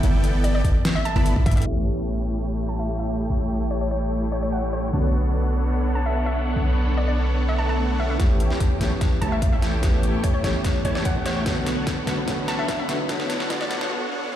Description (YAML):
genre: future bass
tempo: 147 BPM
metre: 4/4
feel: half-time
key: unclear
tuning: A4 = 443 Hz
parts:
  - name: dense compressed supersaw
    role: riff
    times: 0.0-14.4 s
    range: A3 to B5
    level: -27 LUFS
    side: equal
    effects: sidechain pumping, low-pass filter, ping-pong delay
  - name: warm 808-style bass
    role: bass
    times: 0.0-13.9 s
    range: G1 to G2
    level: -24 LUFS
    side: equal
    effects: sidechain pumping
  - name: dubstep drum kit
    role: drums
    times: 0.0-1.7, 8.2-13.9 s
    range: hi-hat, snare drum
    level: -30 LUFS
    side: equal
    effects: overdrive, high-pass filter on snare, low-pass filter on snare, high-pass filter on hats, low-pass filter on hats, high-pass filter on room, low-pass filter on room
  - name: hollow square pluck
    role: melody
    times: 0.4-13.7 s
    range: C#5 to A5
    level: -31 LUFS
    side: left 1 dB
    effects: chorus, sidechain pumping, ping-pong delay
  - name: electronic kick drum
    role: drums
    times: 0.6-1.5, 8.2-13.6 s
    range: none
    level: -22 LUFS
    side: equal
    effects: overdrive
  - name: felt-muted upright piano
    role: accompaniment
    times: 1.6-14.4 s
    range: D3 to C#5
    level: -31 LUFS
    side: equal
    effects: vintage 12-bit sampler grit, sidechain pumping, ping-pong delay
  - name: clear symphonic string section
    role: sustained chords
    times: 1.7-13.9 s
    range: G4 to B5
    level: -39 LUFS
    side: left 2 dB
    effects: sidechain pumping
  - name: swell and riser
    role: sound effects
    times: 7.6-13.9 s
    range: none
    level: -34 LUFS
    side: equal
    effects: none
room: light reverb, digital ambience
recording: played on a big sound system in a bare room, large studio reverb, high-pass filter, low-pass filter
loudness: -20 LUFS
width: side -11 dB against mid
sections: 0.0-1.7 A section; 1.7-8.2 B section; 8.2-14.4 C section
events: drop 0.0-1.7; drum fill 1.5, 8.2-13.9; filter sweep on supersaw synth 1.7-8.2, 8.2-14.4; filter sweep 1.7-8.2, 8.2-14.4; swell 7.6-8.2; build-up 8.2-14.4; break 13.9-14.4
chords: 0.0 G69; 1.7 A7; 4.9 Bm9; 8.2 A7; 11.5 Bm9